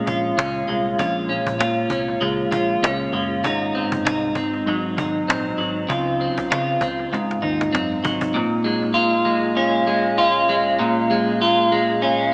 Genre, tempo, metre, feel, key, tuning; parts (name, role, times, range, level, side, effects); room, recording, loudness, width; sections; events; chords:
indie pop, bedroom pop; 98 BPM; 4/4; swing 55% on 16ths; Bb minor; A4 = 435 Hz
clean electric guitar; accompaniment; 0.0-12.3 s; Ab2 to F4; -21 LUFS; equal; lush chorus, vibrato effect, analog delay
vintage muted fingered electric bass; bass; 0.1-8.2 s; Gb1 to Db3; -34 LUFS; equal
cajon; drums; 0.1-8.3 s; -30 LUFS; equal; analog delay
moderate plate reverb, RT60 2.1 s; echo-heavy mix, small speaker sound; -21 LUFS; mono
0.0-8.4 A section; 8.4-12.3 B section
drum fill 7.1-8.4
0.0 Bbm7; 3.4 Ab7; 5.9 Dbmaj7; 7.1 Ab7; 8.4 Bbm7